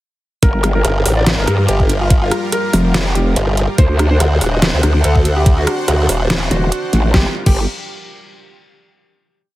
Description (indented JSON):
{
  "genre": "heavy wobble dubstep",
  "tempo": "143 BPM",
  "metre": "4/4",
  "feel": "swing 54% on 16ths, half-time",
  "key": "G minor",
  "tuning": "A4 = 441 Hz",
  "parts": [
    { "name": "clear grand piano", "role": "melody", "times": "0.4-7.6 s", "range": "F4 to Eb5", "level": "-22 LUFS", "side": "equal", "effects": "digital delay" },
    { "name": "supersaw pad", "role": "sustained chords", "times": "0.4-7.3 s", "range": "G3 to F#5", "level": "-25 LUFS", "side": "equal", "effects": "sidechain pumping" },
    { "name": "growl bass", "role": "bass", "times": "0.4-7.7 s", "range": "Eb1 to G2", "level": "-14 LUFS", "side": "equal", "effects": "chorus, overdrive" },
    { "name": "dubstep drum kit", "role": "drums", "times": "0.4-7.5 s", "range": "crash cymbal, hi-hat, rim click, snare drum", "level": "-19 LUFS", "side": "equal", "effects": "none" },
    { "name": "electronic kick drum", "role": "drums", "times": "0.4-7.5 s", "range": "none", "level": "-12 LUFS", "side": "equal", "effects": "none" },
    { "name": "formant-sweep wobble bass", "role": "bass", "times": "0.8-6.5 s", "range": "Eb1 to D2", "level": "-15 LUFS", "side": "equal", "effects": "chorus, overdrive" }
  ],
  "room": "little or no reverb",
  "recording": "heavily compressed radio sound",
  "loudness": "-12 LUFS",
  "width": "side -16 dB against mid",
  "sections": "0.4-7.1 drop; 7.1-8.8 final chord",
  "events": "drop 0.4-7.1",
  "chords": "0.4 Gm7; 3.8 D7; 7.1 Gm7"
}